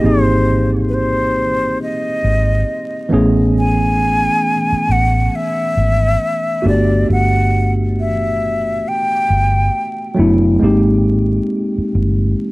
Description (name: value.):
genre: hip hop.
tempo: 68 BPM.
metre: 4/4.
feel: swing 62% on 16ths.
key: unclear.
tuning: A4 = 440 Hz.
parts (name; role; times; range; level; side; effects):
breathy hollow jazz flute; melody; 0.0-10.2 s; Cb5 to G#5; -18 LUFS; equal; none.
mellow tine electric piano; accompaniment; 0.0-12.5 s; E3 to Ab4; -17 LUFS; equal; medium stereo tremolo, cassette tape.
vintage muted fingered electric bass; bass; 0.0-12.3 s; F#1 to A1; -16 LUFS; equal; none.
room: light reverb.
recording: vinyl crackle.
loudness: -13 LUFS.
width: side -21 dB against mid.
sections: 0.0-12.5 A section.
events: none.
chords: 0.0 Abmaj9; 3.1 Amaj9; 6.6 Gmaj9; 10.6 Abmaj9.